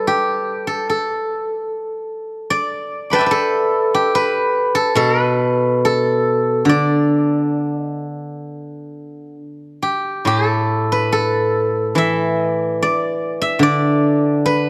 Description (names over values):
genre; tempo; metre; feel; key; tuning
chinese traditional, Chinese solo plucked strings; 65-75 BPM; 4/4; rubato; D zhi mode; A4 = 440 Hz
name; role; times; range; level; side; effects
steel-string zither; solo; 0.0-14.7 s; A2 to D6; -18 LUFS; equal; none
room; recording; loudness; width
light reverb; close, detailed microphones; -18 LUFS; mono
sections
0.0-10.2 A section; 10.2-14.7 B section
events
none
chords
none